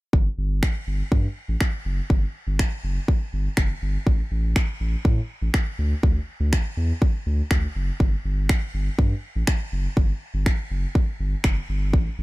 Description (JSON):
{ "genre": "dance-pop", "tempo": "122 BPM", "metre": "4/4", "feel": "straight", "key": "unclear", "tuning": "A4 = 440 Hz", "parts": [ { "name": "saturated sub bass", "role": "bass", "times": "0.1-12.2 s", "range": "F#1 to A2", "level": "-24 LUFS", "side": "equal", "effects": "sidechain pumping" }, { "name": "pop drum kit", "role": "drums", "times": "0.1-12.0 s", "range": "finger snaps, kick drum", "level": "-22 LUFS", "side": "equal", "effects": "none" } ], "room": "little or no reverb", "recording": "none", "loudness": "-21 LUFS", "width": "side -20 dB against mid", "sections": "0.1-12.2 A section", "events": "none", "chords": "none" }